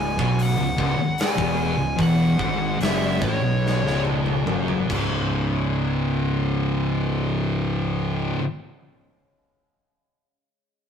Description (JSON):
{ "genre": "stoner and doom metal", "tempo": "69-76 BPM", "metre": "4/4", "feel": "straight", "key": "C# minor", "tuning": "A4 = 438 Hz", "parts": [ { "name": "fuzz lead guitar", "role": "melody", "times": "0.0-4.0 s", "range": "C#5 to G#5", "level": "-27 LUFS", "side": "left 1 dB", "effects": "distortion, slapback echo" }, { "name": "overtone-sweeping drone", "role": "sustained chords", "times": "0.2-8.3 s", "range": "C#3 to C#4", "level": "-40 LUFS", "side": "equal", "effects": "none" }, { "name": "thick fuzz guitar", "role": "riff", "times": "0.0-8.4 s", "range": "C#2 to C#3", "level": "-25 LUFS", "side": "left 5 dB", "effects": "distortion" }, { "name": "thick fuzz guitar", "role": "riff", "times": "0.0-8.4 s", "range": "C#2 to C#3", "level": "-26 LUFS", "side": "right 6 dB", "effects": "distortion" }, { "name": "fuzz fingered electric bass", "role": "bass", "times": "0.0-8.3 s", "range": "C#1 to B1", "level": "-28 LUFS", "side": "equal", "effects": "overdrive" }, { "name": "big rock drum kit", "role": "drums", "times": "0.2-5.1 s", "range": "crash cymbal, hi-hat, kick drum, snare drum, toms", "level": "-27 LUFS", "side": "equal", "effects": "none" } ], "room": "moderate stone room reverb, RT60 1.4 s", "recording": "rough rehearsal-room recording", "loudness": "-20 LUFS", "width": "side -7 dB against mid", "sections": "0.0-5.3 A section; 5.3-8.8 B section", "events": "slowing down 0.0-5.3; drum fill 3.6-5.3", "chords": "0.0 C#m; 4.9 C#5" }